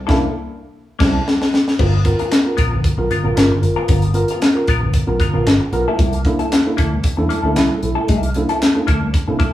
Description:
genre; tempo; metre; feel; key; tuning
funk; 114 BPM; 4/4; straight; unclear; A4 = 440 Hz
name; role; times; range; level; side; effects
semi-hollow electric guitar; accompaniment; 0.1-9.5 s; Bb3 to A#4; -23 LUFS; left 3 dB; wah
tine electric piano; stabs; 0.1-9.5 s; G2 to A#4; -20 LUFS; right 1 dB; none
vintage muted fingered electric bass; bass; 0.1-9.4 s; F#1 to C3; -21 LUFS; equal; none
tight funk drum kit; drums; 0.1-9.5 s; crash cymbal, handclaps, hi-hat, kick drum, snare drum; -17 LUFS; equal; none
room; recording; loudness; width
wet large studio reverb, RT60 1.2 s; band playing live in one room, small room ambience; -14 LUFS; side -14 dB against mid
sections
0.0-1.8 A section; 1.8-9.5 A section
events
band accent 0.0-1.8; drum fill 0.7-1.8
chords
0.0 C13; 1.8 G7#9; 6.0 C13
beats
0.21 0.74 1.26 | 1.79 2.31 2.84 3.36 | 3.89 4.41 4.94 5.46 | 5.99 6.51 7.04 7.56 | 8.09 8.61 9.13

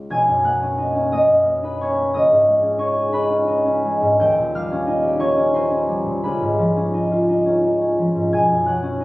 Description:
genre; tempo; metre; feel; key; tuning
classical, solo harp piece; 58 BPM (dotted quarters); 6/8; uneven beats, rubato; unclear; A4 = 440 Hz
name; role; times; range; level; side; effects
concert harp; solo; 0.0-9.0 s; B1 to G#6; -16 LUFS; equal; none
room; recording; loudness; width
moderate stone room reverb, RT60 1.0 s; recorded on a phone in the room, studio reverb; -16 LUFS; side -19 dB against mid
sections
0.1-9.0 A section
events
none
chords
0.1 Bmaj9; 2.1 C#sus2; 4.2 D#9; 6.2 C#9; 8.3 Badd9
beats
| 0.10 1.11 | 2.13 3.12 | 4.19 5.19 | 6.22 7.28 | 8.34

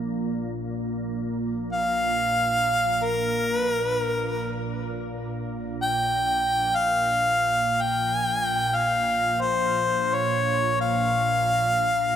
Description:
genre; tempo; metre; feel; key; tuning
world meditative, free-time meditation music; free time; none; none; unclear; A4 = 440 Hz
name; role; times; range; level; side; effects
soft additive organ-like pad; drone; 0.0-12.2 s; Bb1 to Bb2; -30 LUFS; right 1 dB; ensemble chorus, built-in reverb
bronze singing bowl; texture; 0.0-5.1 s; Bb3; -36 LUFS; right 3 dB; none
bright harmonica; melody; 1.7-12.2 s; Bb4 to G5; -22 LUFS; left 1 dB; tape echo
room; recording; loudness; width
wet plate reverb, RT60 3.4 s; echo-heavy mix; -22 LUFS; side -9 dB against mid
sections
0.0-4.7 A section; 4.7-12.2 A section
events
none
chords
none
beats
free time

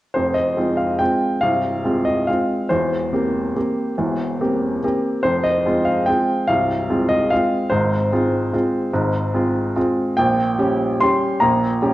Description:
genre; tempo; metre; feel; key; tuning
classical, piano waltz; 144 BPM; 3/4; uneven beats, rubato; F minor; A4 = 440 Hz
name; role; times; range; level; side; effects
bright upright piano; solo; 0.1-11.9 s; C1 to C6; -17 LUFS; equal; none
room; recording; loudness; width
moderate recital hall reverb, RT60 1.7 s; worn, warbling old tape, cassette tape, warbly pitch drift; -17 LUFS; side -16 dB against mid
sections
0.1-11.9 A section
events
none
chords
0.1 Fm; 2.7 C7/E; 5.2 Fm; 7.7 Fm/Ab; 10.2 Gdim/Bb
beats
| 0.15 0.57 1.00 | 1.43 1.85 2.28 | 2.71 3.12 3.55 | 3.98 4.40 4.83 | 5.24 5.65 6.07 | 6.49 6.89 7.31 | 7.72 8.12 8.54 | 8.94 9.34 9.76 | 10.19 10.59 11.01 | 11.42 11.82

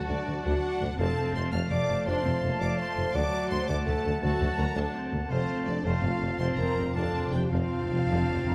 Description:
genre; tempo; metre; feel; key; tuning
cinematic; 111 BPM (dotted quarters); 12/8; straight; unclear; A4 = 440 Hz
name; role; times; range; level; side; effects
rich symphonic violin section; melody; 0.0-8.5 s; C5 to F6; -45 LUFS; equal; none
clear clarinet; second line; 0.0-8.5 s; F5 to F#5; -41 LUFS; equal; none
clear oboe; second line; 0.0-8.5 s; A5; -40 LUFS; equal; none
flute section; second line; 0.0-8.5 s; A5 to C6; -46 LUFS; equal; none
warm studio violin section; second line; 0.0-8.5 s; C5 to F6; -45 LUFS; equal; none
warm studio viola section; accompaniment; 0.0-8.5 s; F#3 to F#4; -39 LUFS; equal; none
dark French horn section; sustained chords; 0.0-8.5 s; C4 to F5; -35 LUFS; equal; none
dark trombone section; sustained chords; 0.0-8.5 s; F3 to C4; -40 LUFS; equal; none
clear tuba; bass; 0.1-8.5 s; F1 to D2; -39 LUFS; equal; none
warm symphonic cello section; bass; 0.1-8.5 s; D2 to F2; -36 LUFS; equal; none
warm symphonic double bass section; bass; 0.1-8.5 s; F1 to D2; -36 LUFS; equal; none
timpani; percussion; 1.0-1.5, 5.3-8.5 s; F2; -36 LUFS; equal; none
room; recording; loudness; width
moderate scoring stage reverb, RT60 1.8 s; none; -28 LUFS; mono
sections
0.0-8.5 A section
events
timpani fill 5.3-8.5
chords
0.0 D; 1.0 F; 3.1 D; 5.3 F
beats
0.44 | 0.98 1.52 2.07 2.61 | 3.15 3.69 4.23 4.77 | 5.31 5.85 6.40 6.96 | 7.53 8.10

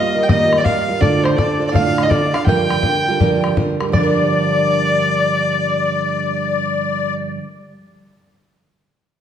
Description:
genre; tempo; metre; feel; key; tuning
celtic folk, Celtic hornpipe; 165 BPM; 4/4; swing 64% on 8ths; G minor; A4 = 440 Hz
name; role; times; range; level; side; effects
warm fiddle; melody; 0.0-7.1 s; C5 to G5; -20 LUFS; equal; none
bluegrass banjo; second line; 0.0-7.1 s; C5 to G5; -27 LUFS; right 3 dB; none
musette accordion; second line; 0.0-7.1 s; C5 to G5; -22 LUFS; left 8 dB; none
picked plugged-in acoustic archtop guitar; accompaniment; 0.0-7.5 s; D2 to Bb4; -19 LUFS; right 4 dB; none
bodhran; percussion; 0.3-4.1 s; none; -20 LUFS; left 2 dB; none
room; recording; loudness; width
wet recital hall reverb, RT60 1.6 s; dark, warm production; -14 LUFS; side -9 dB against mid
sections
0.0-3.9 A section; 3.9-6.8 B section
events
none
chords
0.0 Ebadd9; 1.0 Dm; 2.5 Gm7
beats
0.29 0.65 | 1.02 1.38 1.74 2.11 | 2.47 2.83 3.20 3.56 | 3.93 4.29 4.66 5.02 | 5.38 5.75 6.11 6.48

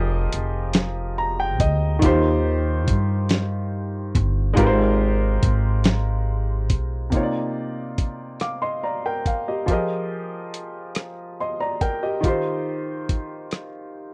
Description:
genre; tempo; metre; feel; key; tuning
slow six-eight R&B; 47 BPM (dotted quarters); 6/8; straight; C minor; A4 = 440 Hz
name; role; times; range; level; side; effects
clear grand piano; accompaniment; 0.0-14.1 s; C3 to D6; -27 LUFS; equal; none
upright bass; bass; 0.0-7.1 s; F1 to G2; -24 LUFS; equal; none
dusty soul sampler-style drum kit; drums; 0.3-13.7 s; hi-hat, kick drum, rim click, snare drum; -24 LUFS; equal; none
room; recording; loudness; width
little or no reverb; dry, close 1970s-style studio recording; -23 LUFS; mono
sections
0.0-7.1 A section; 7.1-14.1 B section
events
grand piano fill 0.7-2.0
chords
0.0 Fm11; 2.0 Eb6; 4.6 Abmaj13; 7.1 Cm11; 9.7 Fm11; 12.2 Eb6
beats
0.74 | 2.02 3.30 | 4.58 5.85 | 7.13 8.40 | 9.68 10.96 | 12.23 13.51

